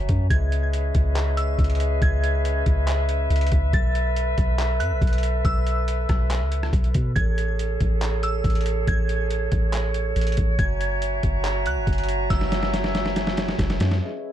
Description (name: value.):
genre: hip hop, atmospheric cloud-rap.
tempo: 140 BPM.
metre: 4/4.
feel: half-time.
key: C# minor.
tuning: A4 = 440 Hz.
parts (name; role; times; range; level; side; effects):
flute section; sustained chords; 0.0-14.3 s; C#4 to A#5; -27 LUFS; right 1 dB; sidechain pumping, low-pass filter.
soft 808-style bass; bass; 0.0-14.0 s; F#1 to B2; -23 LUFS; equal; none.
trip hop sampler-style drum kit; drums; 0.1-14.0 s; handclaps, hi-hat, kick drum, rim click, snare drum; -25 LUFS; equal; none.
glassy synth bell; melody; 0.3-14.3 s; E6 to A6; -33 LUFS; right 1 dB; chorus, tremolo, low-pass filter, ping-pong delay.
room: little or no reverb.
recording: dark, warm production.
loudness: -20 LUFS.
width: side -11 dB against mid.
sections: 0.3-14.0 A section.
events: drum fill 12.3-14.0.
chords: 0.3 C#m7; 3.7 B7sus4; 7.2 Amaj7; 10.6 F#7.